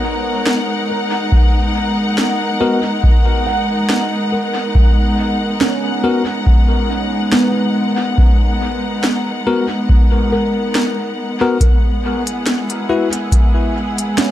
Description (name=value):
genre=ambient dub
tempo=70 BPM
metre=4/4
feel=swing 54% on 16ths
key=G# minor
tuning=A4 = 440 Hz
part: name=dark studio string section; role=sustained chords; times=0.0-14.3 s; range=G#3 to F#5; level=-18 LUFS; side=left 1 dB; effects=none
part: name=handpan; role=arpeggios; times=0.0-14.3 s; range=B3 to F#5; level=-24 LUFS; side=right 2 dB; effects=low-pass filter, tape echo
part: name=organic electronic drum kit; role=drums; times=0.5-14.3 s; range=hi-hat, snare drum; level=-20 LUFS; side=equal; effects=dub echo
part: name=electronic kick drum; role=drums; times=1.3-13.5 s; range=none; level=-13 LUFS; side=equal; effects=none
part: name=bell-like tine electric piano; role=stabs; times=2.6-13.1 s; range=B3 to B4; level=-20 LUFS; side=left 3 dB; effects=dub echo
room=digital ambience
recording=echo-heavy mix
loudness=-13 LUFS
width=side -13 dB against mid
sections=0.0-14.3 A section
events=filter sweep on handpan 0.0-14.3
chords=0.0 G#m9; 11.6 Esus2/G#